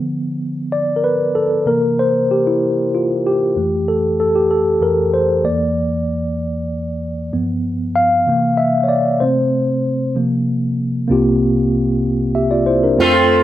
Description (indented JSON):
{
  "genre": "gospel",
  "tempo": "64 BPM (dotted quarters)",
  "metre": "6/8",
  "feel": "straight",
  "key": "unclear",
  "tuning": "A4 = 440 Hz",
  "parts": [
    { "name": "mellow tine electric piano", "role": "accompaniment", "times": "0.0-13.4 s", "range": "C2 to F5", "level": "-15 LUFS", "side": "equal", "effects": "medium stereo tremolo" },
    { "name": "sitar", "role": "melody", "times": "13.0-13.4 s", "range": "A3 to F4", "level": "-12 LUFS", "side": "right 2 dB", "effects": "none" }
  ],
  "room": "moderate large studio reverb, RT60 1.3 s, small room ambience",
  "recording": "none",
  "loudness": "-14 LUFS",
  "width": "side -13 dB against mid",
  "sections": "0.0-11.1 A section; 11.1-13.0 B section",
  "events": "tine electric piano solo 0.0-11.1",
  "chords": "0.0 Dm6; 1.7 C7; 3.6 Fmaj7; 5.4 Bb; 7.3 G7; 8.3 C7; 9.2 Am/C; 10.2 C7sus4",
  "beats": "0.73 | 1.67 2.62 | 3.56 4.50 | 5.45 6.39 | 7.33 8.28 | 9.22 10.16 | 11.10 12.05 | 12.99"
}